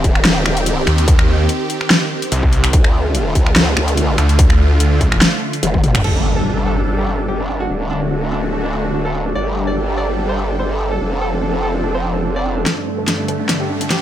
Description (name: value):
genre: heavy wobble dubstep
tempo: 145 BPM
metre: 4/4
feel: swing 54% on 16ths, half-time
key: unclear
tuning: A4 = 435 Hz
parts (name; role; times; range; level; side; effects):
- supersaw pad; sustained chords; 0.0-14.0 s; G2 to A4; -21 LUFS; equal; phaser, sidechain pumping
- growl bass; bass; 0.0-12.6 s; D1 to D2; -20 LUFS; equal; chorus, overdrive
- dubstep drum kit; drums; 0.0-6.1, 12.7-14.0 s; crash cymbal, finger snaps, hi-hat, snare drum, toms; -17 LUFS; left 1 dB; none
- electronic kick drum; drums; 0.0-5.8 s; none; -14 LUFS; equal; distortion
- snarling distorted saw bass; bass; 0.9-5.2 s; C2 to Eb2; -14 LUFS; equal; overdrive
- bright baby grand piano; melody; 6.0-14.0 s; D4 to D5; -24 LUFS; right 2 dB; low-pass filter, ping-pong delay
- impact and riser; sound effects; 6.0-7.7, 13.4-14.0 s; none; -22 LUFS; equal; none
room: little or no reverb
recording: none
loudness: -14 LUFS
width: side -11 dB against mid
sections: 0.0-6.0 A section; 6.0-12.7 B section; 12.7-14.0 C section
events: drop 0.0-6.0; drum fill 5.6-6.0, 12.7-14.0; band accent 5.9; impact 6.0-7.7; build-up 12.7-14.0; filter sweep on grand piano 12.7-14.0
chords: 0.0 Eb6; 2.7 Dm; 6.0 Gsus2; 7.7 D; 9.4 Gsus2; 11.0 Dm7/F; 12.7 Gsus2